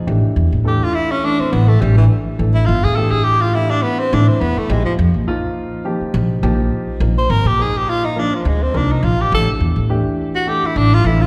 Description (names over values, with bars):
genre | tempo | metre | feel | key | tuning
jazz | 104 BPM | 4/4 | swing 54% on 16ths | unclear | A4 = 437 Hz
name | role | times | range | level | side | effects
dark concert grand piano | accompaniment | 0.0-11.3 s | E3 to Bb4 | -24 LUFS | equal | none
upright bass | bass | 0.1-11.3 s | G1 to Bb2 | -18 LUFS | equal | none
breathy tenor saxophone | melody | 0.7-11.3 s | E3 to C5 | -20 LUFS | equal | slapback echo
room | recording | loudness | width
light reverb | live gig heard through the venue's PA, recital hall reverb | -16 LUFS | mono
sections
0.0-11.3 A section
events
tenor saxophone solo 0.0-11.3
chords
0.1 A7sus4; 4.7 Bbsus4; 9.3 A7sus4